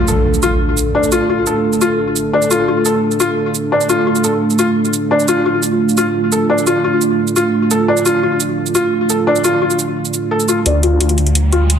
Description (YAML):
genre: dark technical drum and bass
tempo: 173 BPM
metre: 4/4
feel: straight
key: D minor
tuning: A4 = 440 Hz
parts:
  - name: dark analog pad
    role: sustained chords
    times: 0.0-11.8 s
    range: A3 to A4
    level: -17 LUFS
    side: right 2 dB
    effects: chorus
  - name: felt-muted upright piano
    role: arpeggios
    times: 0.0-11.6 s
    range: D4 to A4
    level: -16 LUFS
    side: left 2 dB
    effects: low-pass filter, tape echo
  - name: impact and riser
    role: sound effects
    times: 0.0-0.9, 11.2-11.8 s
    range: none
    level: -20 LUFS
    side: equal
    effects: none
  - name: electronic shaker and hi-hat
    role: drums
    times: 0.1-11.8 s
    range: none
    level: -20 LUFS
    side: right 5 dB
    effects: none
  - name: phased detuned saw bass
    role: bass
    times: 10.7-11.8 s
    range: D2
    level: -13 LUFS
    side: equal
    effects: phaser, overdrive
room: moderate digital room reverb, RT60 1.3 s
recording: dense, heavily limited modern master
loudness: -12 LUFS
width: side -8 dB against mid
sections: 0.0-10.7 A section; 10.7-11.8 B section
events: impact 0.0-0.9; build-up 10.7-11.8; riser 11.2-11.8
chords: 0.0 D5